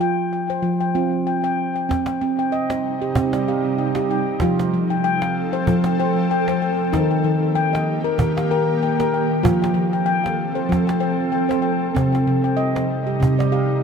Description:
world meditative, meditative tuned percussion; 95 BPM; 4/4; swing 56% on 16ths; A4 = 445 Hz
handpan; arpeggios; 0.0-13.8 s; C3 to G5; -19 LUFS; left 1 dB; diffuse ambient delay
ethereal airy pad; sustained chords; 2.6-13.8 s; C3 to A4; -23 LUFS; right 2 dB; ensemble chorus, built-in reverb, tremolo
cajon; percussion; 1.9-13.8 s; -25 LUFS; right 1 dB
wet echo chamber reverb, RT60 2.7 s; -18 LUFS; side -6 dB against mid
0.0-1.9 A section; 1.9-13.8 B section
0.0 F5; 1.9 Cm; 4.4 F; 6.9 Eb; 9.4 F; 12.0 Cm

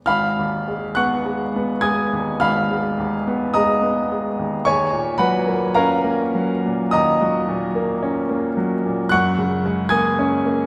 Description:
classical, impressionist solo piano; 49-56 BPM; 4/4; rubato; G# minor; A4 = 439 Hz
clear baby grand piano; solo; 0.0-10.7 s; G#1 to G#6; -20 LUFS; equal
wet concert hall reverb, RT60 2.2 s; heard from further back in the room; -20 LUFS; mono
0.1-10.7 A section
0.1 G#m6; 4.6 D#m9; 9.1 F#69

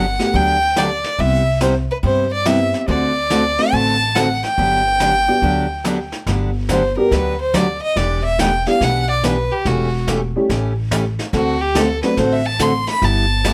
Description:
country, western swing; 142 BPM; 4/4; swing 66% on 8ths; G major; A4 = 440 Hz
clear fiddle; melody; 0.0-13.5 s; F#4 to C6; -20 LUFS; equal
picked steel-string acoustic guitar; accompaniment; 0.0-13.5 s; C3 to A4; -23 LUFS; equal
upright bass; bass; 0.0-13.5 s; E1 to G2; -24 LUFS; equal
honky-tonk upright piano; accompaniment; 0.2-12.2 s; F#3 to G4; -22 LUFS; equal
jazz brush drum kit; drums; 0.2-13.5 s; brushed snare drum, hi-hat, kick drum, snare drum; -27 LUFS; equal
moderate studio ambience, RT60 0.5 s; -17 LUFS; mono
0.0-6.3 A section; 6.3-13.5 B section
fiddle solo 6.3-13.5
0.0 Gmaj7; 1.2 Cmaj7; 2.9 D7; 4.6 Gmaj7; 8.0 Em7; 9.7 A7/E; 11.3 D7; 13.0 G6

